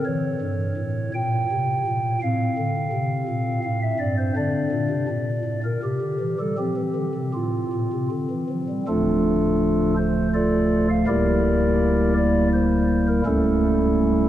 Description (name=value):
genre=classical, chorale-style piece for pipe organ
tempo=82 BPM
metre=3/4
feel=rubato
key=F major, D minor from 8.9 s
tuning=A4 = 440 Hz
part: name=pipe organ, stopped flute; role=solo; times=0.0-14.3 s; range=C#1 to G5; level=-20 LUFS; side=equal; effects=none
room=wet cathedral reverb, RT60 4.8 s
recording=dark, warm production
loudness=-20 LUFS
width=side -12 dB against mid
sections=0.0-8.9 A section; 8.9-14.3 B section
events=none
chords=0.1 Edim7; 2.2 F/A; 4.4 Bbadd9; 5.1 Bbmaj7; 5.8 C; 6.6 F; 8.9 Dm; 11.1 Em7b5/D; 13.3 A7/C#